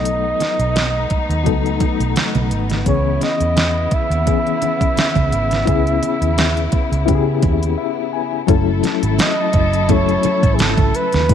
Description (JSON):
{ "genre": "lush 1970s-style soul", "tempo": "85 BPM", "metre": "4/4", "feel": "swing 54% on 16ths", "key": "F# dorian", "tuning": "A4 = 440 Hz", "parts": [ { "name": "breathy flugelhorn", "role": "melody", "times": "0.0-11.3 s", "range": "G#4 to E5", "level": "-21 LUFS", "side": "right 2 dB", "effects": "none" }, { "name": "reed electric piano", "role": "accompaniment", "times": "0.0-11.3 s", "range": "E3 to G#5", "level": "-21 LUFS", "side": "left 14 dB", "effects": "overdrive, tremolo" }, { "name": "rich studio string section", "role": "sustained chords", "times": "0.0-11.3 s", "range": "C#3 to A4", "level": "-25 LUFS", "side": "left 1 dB", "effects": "none" }, { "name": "vintage muted fingered electric bass", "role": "bass", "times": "0.0-11.3 s", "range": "F#1 to C#3", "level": "-20 LUFS", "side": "right 1 dB", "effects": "none" }, { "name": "pop drum kit", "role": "drums", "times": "0.1-11.3 s", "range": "hi-hat, kick drum, snare drum", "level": "-19 LUFS", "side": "right 1 dB", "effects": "none" }, { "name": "congas", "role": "percussion", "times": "0.4-11.3 s", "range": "none", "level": "-25 LUFS", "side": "right 11 dB", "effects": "none" } ], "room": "small room ambience", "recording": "1960s-style stereo with parts hard left and right", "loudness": "-14 LUFS", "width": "side -8 dB against mid", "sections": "0.0-8.5 A section; 8.5-11.3 B section", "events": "reed electric piano fill 7.4-8.5; break 7.8-8.5", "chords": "0.0 B7; 2.9 C#m7; 8.5 F#m7", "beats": "| 0.05 0.76 1.46 2.16 | 2.86 3.57 4.27 4.97 | 5.67 6.38 7.08 7.78 | 8.48 9.19 9.89 10.59 | 11.30" }